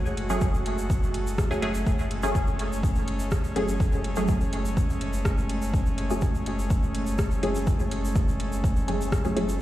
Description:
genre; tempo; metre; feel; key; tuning
dub techno; 124 BPM; 4/4; straight; F# minor; A4 = 438 Hz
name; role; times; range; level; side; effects
airy breathy pad; sustained chords; 0.0-9.6 s; G#3 to F#4; -31 LUFS; equal; chorus, sidechain pumping
warm sub bass; bass; 0.0-9.6 s; F#1; -31 LUFS; equal; sidechain pumping
egg shaker; percussion; 0.1-9.6 s; none; -44 LUFS; right 2 dB; none
deep house drum kit; drums; 0.2-9.5 s; hi-hat, rim click; -36 LUFS; left 1 dB; overdrive, small room ambience, dub echo
filtered dub chord stab; stabs; 0.3-9.6 s; F#3 to G#4; -31 LUFS; equal; chorus, phaser, dub echo
electronic kick drum; drums; 0.4-9.2 s; none; -25 LUFS; equal; overdrive, small room ambience
room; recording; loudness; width
light reverb; played on a big sound system in a bare room, large studio reverb, vinyl crackle; -23 LUFS; side -14 dB against mid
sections
0.0-9.6 A section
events
filter sweep on synth stab 0.0-9.6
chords
0.0 F#madd9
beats
0.41 0.90 1.38 | 1.87 2.35 2.83 3.32 | 3.80 4.29 4.77 5.25 | 5.74 6.22 6.71 7.19 | 7.67 8.16 8.64 9.12 | 9.61

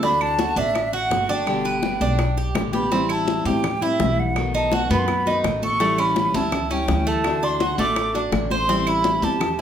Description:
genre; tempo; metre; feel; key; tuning
latin, Cuban son and guajira; 166 BPM; 4/4; straight; unclear; A4 = 440 Hz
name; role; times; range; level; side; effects
hollow concert flute; melody; 0.0-9.6 s; E5 to D6; -24 LUFS; right 1 dB; none
nylon-string guitar; accompaniment; 0.0-9.6 s; B2 to G4; -26 LUFS; left 3 dB; none
Cuban tres; arpeggios; 0.0-9.6 s; A3 to C5; -25 LUFS; right 3 dB; none
upright bass; bass; 0.0-9.6 s; G1 to A2; -27 LUFS; equal; none
bongos; percussion; 0.0-9.6 s; none; -30 LUFS; left 5 dB; none
congas; percussion; 0.0-9.6 s; none; -30 LUFS; left 1 dB; none
claves; percussion; 0.2-9.6 s; none; -35 LUFS; right 5 dB; none
room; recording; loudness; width
moderate large studio reverb, RT60 1.1 s; band playing live in one room; -19 LUFS; side -9 dB against mid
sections
0.0-2.9 A section; 2.9-9.6 B section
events
none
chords
0.0 D; 1.5 G; 2.9 Am7; 4.4 B7; 5.8 A7; 7.2 D; 8.7 Am7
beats
| 0.03 0.39 0.75 1.11 | 1.47 1.83 2.19 2.56 | 2.92 3.28 3.64 4.00 | 4.36 4.72 5.08 5.44 | 5.80 6.17 6.53 6.89 | 7.25 7.61 7.97 8.33 | 8.69 9.05 9.41

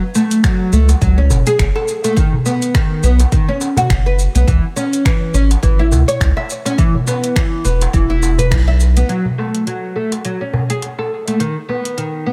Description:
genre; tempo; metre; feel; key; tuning
organic downtempo; 104 BPM; 4/4; swing 56% on 16ths; F# dorian; A4 = 440 Hz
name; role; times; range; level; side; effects
deep house drum kit; drums; 0.1-12.1 s; finger snaps, hi-hat, shaker; -27 LUFS; equal; none
oud; arpeggios; 0.2-12.3 s; D#3 to E5; -20 LUFS; equal; low-pass filter, delay
darbuka; percussion; 0.2-11.8 s; none; -25 LUFS; equal; none
electronic kick drum; drums; 0.4-8.6 s; none; -18 LUFS; equal; none
round analog bass; bass; 0.7-9.0 s; E1 to C#2; -15 LUFS; equal; sidechain pumping
room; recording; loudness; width
little or no reverb; none; -15 LUFS; mono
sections
0.0-9.1 A section; 9.1-12.3 B section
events
band accent 8.5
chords
0.0 F#m; 2.2 B; 4.5 C#m; 6.8 E5; 9.1 F#m; 11.4 B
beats
0.44 1.01 1.59 | 2.17 2.74 3.32 3.90 | 4.47 5.05 5.63 6.21 | 6.78 7.36 7.94 8.51 | 9.09 9.67 10.24 10.82 | 11.40 11.97

